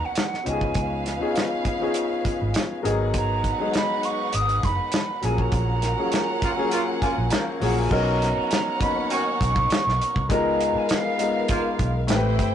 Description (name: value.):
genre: lush 1970s-style soul.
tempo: 101 BPM.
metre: 4/4.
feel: swing 54% on 16ths.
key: unclear.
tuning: A4 = 439 Hz.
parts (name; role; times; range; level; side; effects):
breathy mellow jazz flute; melody; 0.0-11.8 s; E#5 to D#6; -27 LUFS; right 4 dB; none.
warm studio violin section; second line; 0.0-12.5 s; B3 to G5; -31 LUFS; equal; none.
warm concert grand piano; accompaniment; 0.0-12.5 s; E#3 to A#5; -26 LUFS; left 3 dB; none.
damped 70s drum kit; drums; 0.2-12.5 s; crash cymbal, hi-hat, kick drum, snare drum; -26 LUFS; equal; none.
vintage muted fingered electric bass; bass; 0.5-12.5 s; F#1 to C#2; -26 LUFS; right 1 dB; none.
warm horn section; stabs; 6.4-11.9 s; B2 to F#4; -29 LUFS; right 3 dB; none.
room: moderate studio ambience, RT60 0.5 s.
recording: rough rehearsal-room recording, warm saturation, nothing above 11.0 kHz.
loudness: -21 LUFS.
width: side -9 dB against mid.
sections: 0.0-7.9 A section; 7.9-12.5 B section.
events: band accent 5.5-7.9; grand piano fill 6.7-7.9.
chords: 0.5 C#7; 2.8 G#m7; 5.2 F#maj7/A#; 7.9 Bmaj9; 10.3 C#13.